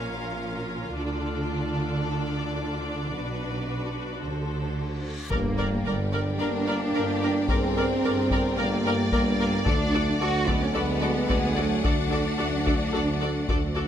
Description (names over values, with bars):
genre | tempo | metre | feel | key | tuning
cinematic, epic orchestral film score | 110 BPM | 4/4 | straight | unclear | A4 = 440 Hz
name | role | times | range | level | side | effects
clear symphonic violin section | second line | 0.0-13.8 s | A4 to F5 | -35 LUFS | left 2 dB | none
rich symphonic viola section | accompaniment | 0.0-13.8 s | Db4 to Bb4 | -34 LUFS | left 1 dB | none
rich studio double bass section | bass | 0.0-13.9 s | Bb1 to G2 | -31 LUFS | right 1 dB | none
warm symphonic cello section | bass | 0.0-13.8 s | Bb2 to F#4 | -30 LUFS | right 2 dB | none
reverse cymbal and impact | sound effects | 4.8-7.5 s | none | -38 LUFS | left 1 dB | none
clear trombone section | sustained chords | 5.3-13.7 s | G3 to F#4 | -34 LUFS | right 3 dB | none
mellow French horn section | sustained chords | 5.3-13.8 s | D3 to Ab4 | -32 LUFS | left 4 dB | none
warm symphonic string section | sustained chords | 5.3-13.9 s | F#3 to G5 | -34 LUFS | left 2 dB | none
warm tuba | bass | 5.3-13.9 s | G1 to D2 | -32 LUFS | right 4 dB | none
solo taiko drums | drums | 5.3-13.9 s | none | -29 LUFS | left 1 dB | none
warm symphonic violin section | melody | 6.4-13.8 s | F#4 to D5 | -35 LUFS | left 2 dB | none
timpani | percussion | 9.7-10.4 s | D3 | -34 LUFS | left 2 dB | none
room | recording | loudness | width
light reverb | close, detailed microphones | -24 LUFS | side -9 dB against mid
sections
0.0-5.3 A section; 5.3-13.9 B section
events
build-up 0.0-5.3; reverse cymbal 4.8-5.3; impact 5.3-7.5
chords
0.0 Bbm; 0.9 Dm; 3.1 Bm; 4.2 D7; 5.3 Gm; 9.7 D